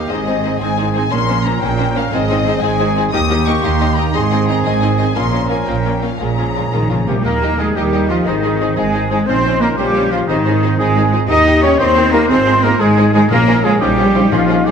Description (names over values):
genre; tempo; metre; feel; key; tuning
cinematic; 119 BPM (dotted quarters); 6/8; straight; Bb dorian; A4 = 442 Hz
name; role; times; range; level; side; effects
dark symphonic violin section; melody; 0.0-14.7 s; Bb4 to Eb6; -24 LUFS; left 6 dB; none
clear trombone section; sustained chords; 0.0-14.7 s; Ab2 to Eb4; -24 LUFS; right 4 dB; none
clear trumpet; stabs; 0.0-14.7 s; Eb4 to Eb5; -20 LUFS; equal; none
bright symphonic cello section; bass; 0.0-14.7 s; Eb2 to Eb4; -18 LUFS; right 1 dB; none
clear symphonic double bass section; bass; 0.0-14.7 s; Ab1 to Eb2; -20 LUFS; right 4 dB; none
warm symphonic violin section; second line; 0.1-14.7 s; Db4 to Eb5; -26 LUFS; left 2 dB; none
clear symphonic viola section; accompaniment; 0.1-14.7 s; Ab3 to Eb4; -24 LUFS; left 1 dB; none
timpani; percussion; 6.2-7.2, 13.3-14.7 s; Bb2; -22 LUFS; left 2 dB; none
clear clarinet; second line; 7.1-14.7 s; Eb4 to Eb5; -23 LUFS; left 3 dB; none
concert flute; second line; 7.1-14.7 s; Eb5 to Eb6; -24 LUFS; left 1 dB; none
warm oboe; second line; 7.1-14.7 s; Eb4 to Eb5; -25 LUFS; right 1 dB; none
mellow French horn section; sustained chords; 7.8-14.7 s; C4 to Bb4; -22 LUFS; left 7 dB; none
room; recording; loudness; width
wet scoring stage reverb, RT60 2.0 s; none; -12 LUFS; side -7 dB against mid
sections
0.0-7.2 A section; 7.2-14.7 A section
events
timpani fill 6.2-7.2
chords
0.1 Ab; 1.1 Bbmadd9; 2.1 Ab; 3.1 Eb; 4.1 Ab; 5.2 Bbmadd9; 6.2 Bbm7; 7.2 Eb; 8.3 Ab; 9.3 Bbmadd9; 10.3 Ab; 11.3 Eb; 12.3 Ab; 13.3 Bbmadd9